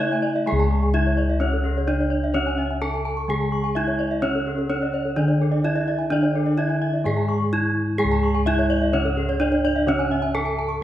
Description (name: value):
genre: gamelan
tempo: 128 BPM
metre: 4/4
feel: straight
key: C# pelog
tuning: A4 = 440 Hz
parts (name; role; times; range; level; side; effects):
- gamelan-type bronze metallophone; melody; 0.0-10.8 s; C#4 to A4; -24 LUFS; equal; none
- gamelan-type bronze metallophone; accompaniment; 0.0-10.8 s; C#3 to A3; -28 LUFS; right 1 dB; none
- gamelan-type bronze metallophone; arpeggios; 0.0-10.7 s; G#4 to C#6; -27 LUFS; left 2 dB; none
- gamelan-type bossed gongs; bass; 0.0-10.8 s; C#2 to G#4; -25 LUFS; left 1 dB; none
- gamelan-type bronze metallophone; arpeggios; 0.1-10.8 s; A4 to C#6; -30 LUFS; right 6 dB; none
room: wet recital hall reverb, RT60 1.5 s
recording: recorded in a church or concert hall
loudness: -19 LUFS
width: side -12 dB against mid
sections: 0.5-10.8 A section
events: none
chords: none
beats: 0.00 | 0.47 0.94 1.41 1.88 | 2.35 2.82 3.29 3.76 | 4.23 4.70 5.17 5.64 | 6.11 6.58 7.05 7.52 | 7.99 8.46 8.93 9.40 | 9.87 10.34 10.81